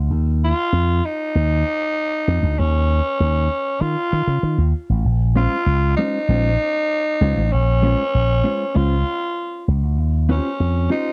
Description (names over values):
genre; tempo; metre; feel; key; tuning
funk; 97 BPM; 4/4; straight; unclear; A4 = 436 Hz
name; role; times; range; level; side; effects
slap bass with an envelope filter; bass; 0.0-10.9 s; A1 to Eb3; -20 LUFS; equal; none
breathy tenor saxophone; melody; 0.4-11.1 s; Db4 to F4; -24 LUFS; equal; none
mellow electric guitar; accompaniment; 5.4-11.1 s; Ab3 to C5; -25 LUFS; equal; spring reverb
room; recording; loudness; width
studio reverb; dry, close 1970s-style studio recording; -19 LUFS; mono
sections
0.0-11.1 A section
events
none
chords
0.1 Ebsus2; 5.1 Bbm9; 10.0 Eb13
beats
| 0.12 0.73 1.35 1.97 | 2.58 3.20 3.82 4.43 | 5.05 5.67 6.28 6.90 | 7.52 8.13 8.75 9.37 | 9.98 10.60